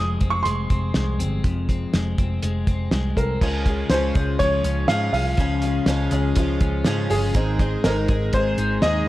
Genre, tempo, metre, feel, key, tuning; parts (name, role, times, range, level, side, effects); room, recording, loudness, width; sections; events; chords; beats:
jangly indie pop; 122 BPM; 4/4; straight; A4 = 440 Hz
warm upright piano; melody; 0.0-9.1 s; Ab4 to Eb6; -24 LUFS; equal
twelve-string electric guitar; arpeggios; 0.0-9.1 s; F2 to Ab4; -27 LUFS; left 5 dB; tape echo
vintage muted picked electric bass; bass; 0.0-9.0 s; F1 to Ab2; -24 LUFS; equal
cloth-damped thuddy drum kit; drums; 0.2-8.9 s; crash cymbal, hi-hat, kick drum, snare drum; -23 LUFS; equal
picked twelve-string acoustic guitar; accompaniment; 3.4-9.1 s; Ab2 to Ab4; -28 LUFS; right 4 dB
light reverb, small room ambience; dark, warm production; -19 LUFS; side -16 dB against mid
0.0-3.4 A section; 3.4-9.1 B section
0.0 Fm; 3.4 Db; 7.4 Ab
0.46 0.95 | 1.45 1.94 2.43 2.92 | 3.42 3.91 4.40 4.89 | 5.38 5.88 6.37 6.86 | 7.35 7.84 8.34 8.83